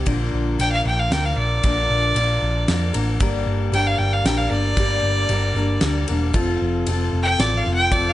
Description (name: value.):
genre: folk rock and heartland rock.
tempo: 115 BPM.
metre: 3/4.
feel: straight.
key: G minor.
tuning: A4 = 437 Hz.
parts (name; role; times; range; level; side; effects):
picked steel-string acoustic guitar; accompaniment; 0.0-8.1 s; G2 to Bb4; -25 LUFS; left 2 dB; none.
hollow-body short-scale picked electric bass; bass; 0.0-8.1 s; E1 to F2; -22 LUFS; equal; none.
damped 70s drum kit; drums; 0.1-8.0 s; kick drum, ride cymbal, snare drum; -26 LUFS; equal; none.
bright fiddle; melody; 0.6-8.1 s; D5 to G5; -22 LUFS; equal; none.
room: light reverb.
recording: nothing above 10.7 kHz, faint mains hum.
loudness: -18 LUFS.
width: side -14 dB against mid.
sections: 0.0-8.1 A section.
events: fiddle solo 0.0-8.1.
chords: 0.1 Bb; 3.2 Gm; 6.3 F.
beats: | 0.07 0.60 1.12 | 1.64 2.17 2.69 | 3.21 3.74 4.26 | 4.78 5.30 5.83 | 6.35 6.87 7.39 | 7.91.